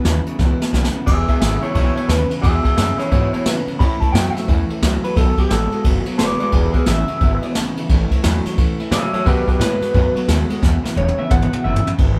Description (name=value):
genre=rockabilly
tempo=176 BPM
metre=4/4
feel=swing 63% on 8ths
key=E major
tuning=A4 = 440 Hz
part: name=electric guitar through a small old amp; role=melody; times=0.0-11.9 s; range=E4 to B5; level=-25 LUFS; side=equal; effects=spring reverb
part: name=picked steel-string acoustic guitar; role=accompaniment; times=0.0-12.2 s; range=E2 to F#4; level=-31 LUFS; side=equal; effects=none
part: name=electric guitar through a small old amp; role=riff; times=0.0-12.0 s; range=E2 to G#3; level=-26 LUFS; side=equal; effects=none
part: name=upright bass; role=bass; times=0.0-12.2 s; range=E1 to C#3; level=-23 LUFS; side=equal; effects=none
part: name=jazz brush drum kit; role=drums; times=0.0-12.1 s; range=crash cymbal, hi-hat, kick drum, ride cymbal, snare drum, toms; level=-21 LUFS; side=equal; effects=none
room=moderate studio ambience, RT60 0.5 s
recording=band playing live in one room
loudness=-17 LUFS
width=mono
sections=0.0-1.1 A section; 1.1-12.0 B section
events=drum fill 0.4-1.1, 10.6-12.0; clean electric guitar solo 1.1-12.2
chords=0.0 E; 3.8 A; 5.2 B7; 6.5 E; 7.9 A; 9.3 B7; 10.6 E